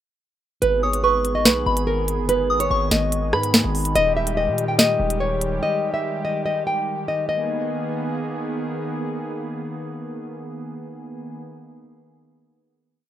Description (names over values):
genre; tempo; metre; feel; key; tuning
hip hop, drill; 144 BPM; 4/4; half-time; G# harmonic minor; A4 = 440 Hz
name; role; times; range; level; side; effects
nylon-string guitar; melody; 0.6-8.5 s; A#4 to G5; -22 LUFS; equal; tape echo
warm analog pad; sustained chords; 0.6-11.4 s; D#3 to G#4; -27 LUFS; equal; lush chorus
distorted 808-style bass; bass; 0.6-5.6 s; D#1 to A#2; -26 LUFS; equal; distortion
drill drum kit; drums; 0.6-5.5 s; hi-hat, rim click, snare drum; -18 LUFS; equal; none
soft synth bell; second line; 0.8-3.9 s; B5 to D#6; -25 LUFS; right 1 dB; chorus, phaser, tape echo
room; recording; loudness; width
light reverb; rough home demo mix; -19 LUFS; side -11 dB against mid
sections
0.6-7.3 hook; 7.3-10.6 final chord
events
none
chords
0.6 G#m; 4.0 D#; 7.3 G#madd9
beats
| 0.62 1.04 1.46 1.87 | 2.29 2.71 3.12 3.54 | 3.96 4.37 4.79 5.21 | 5.62 6.04 6.46 6.87 | 7.29 7.71 8.12 8.54 | 8.96 9.37 9.79 10.21